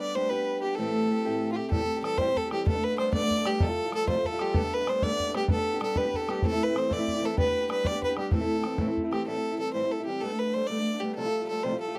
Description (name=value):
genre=celtic folk, Celtic jig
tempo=127 BPM (dotted quarters)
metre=6/8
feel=straight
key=A minor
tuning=A4 = 441 Hz
part: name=clear fiddle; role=melody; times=0.0-12.0 s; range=F4 to D5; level=-31 LUFS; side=equal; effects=none
part: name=picked steel-string acoustic guitar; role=accompaniment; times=0.0-12.0 s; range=F2 to G4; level=-33 LUFS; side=equal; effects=none
part: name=bodhran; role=percussion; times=1.7-9.2 s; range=none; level=-33 LUFS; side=equal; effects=none
room=little or no reverb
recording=dry, close 1970s-style studio recording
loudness=-28 LUFS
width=mono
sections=0.0-1.7 A section; 1.7-9.3 B section; 9.3-12.0 B section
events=none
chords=0.0 G; 0.8 Am7; 2.7 Gadd9; 3.6 Fadd9; 4.5 Gadd9; 5.5 G; 6.4 Am; 7.4 G; 8.3 Am; 9.3 Am7; 10.2 Gadd9; 11.2 Fadd9